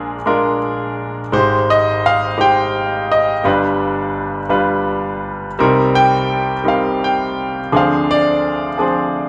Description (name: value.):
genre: acoustic folk-pop ballad.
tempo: 56 BPM (dotted quarters).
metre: 6/8.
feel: straight.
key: C minor.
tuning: A4 = 441 Hz.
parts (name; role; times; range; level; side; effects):
clear grand piano; solo; 0.0-9.3 s; G1 to G5; -16 LUFS; equal; none.
room: wet large studio reverb, RT60 1.3 s.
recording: band playing live in one room.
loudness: -16 LUFS.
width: mono.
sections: 0.0-9.3 A section.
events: none.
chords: 0.0 Bb7; 1.3 Abmaj7; 3.4 G7; 5.6 Cm7; 7.7 Dm7b5.